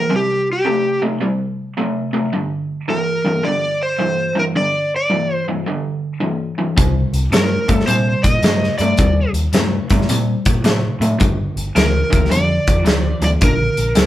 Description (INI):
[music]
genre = blues rock power trio and southern rock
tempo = 108 BPM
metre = 4/4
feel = swing 65% on 8ths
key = G minor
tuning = A4 = 440 Hz
[part]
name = overdriven slide guitar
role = melody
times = 0.0-14.1 s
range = G4 to Eb5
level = -19 LUFS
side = equal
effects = none
[part]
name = raw garage guitar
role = riff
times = 0.0-14.1 s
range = G2 to A3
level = -20 LUFS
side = equal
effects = overdrive
[part]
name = picked electric bass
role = bass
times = 6.8-14.1 s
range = G1 to Bb2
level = -19 LUFS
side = equal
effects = none
[part]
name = big rock drum kit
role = drums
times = 6.8-14.1 s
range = hi-hat, kick drum, snare drum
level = -17 LUFS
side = equal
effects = none
[sound]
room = moderate large studio reverb, RT60 0.9 s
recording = band playing live in one room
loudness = -15 LUFS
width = side -13 dB against mid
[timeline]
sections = 0.0-14.1 A section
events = none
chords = 0.1 C5; 2.3 G5; 6.8 C7(no3); 11.2 Gm7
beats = | 0.10 0.66 1.21 1.77 | 2.33 2.88 3.44 4.00 | 4.55 5.11 5.66 6.22 | 6.77 7.33 7.88 8.44 | 8.99 9.54 10.10 10.65 | 11.21 11.76 12.32 12.87 | 13.43 13.98